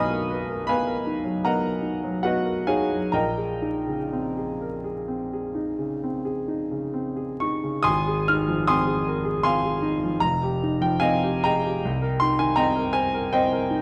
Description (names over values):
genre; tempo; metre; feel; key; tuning
classical, impressionist solo piano; 61-81 BPM; 5/4; rubato; Ab major; A4 = 437 Hz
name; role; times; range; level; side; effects
clear grand piano; solo; 0.0-13.8 s; F1 to F6; -25 LUFS; equal; none
room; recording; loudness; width
moderate recital hall reverb, RT60 1.3 s; close, detailed microphones, vinyl crackle; -25 LUFS; mono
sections
0.0-7.9 A section; 7.9-13.8 B section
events
none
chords
0.0 Bmaj7; 3.1 Bbm11; 7.9 Ab6; 10.2 Fm9; 11.8 Cm7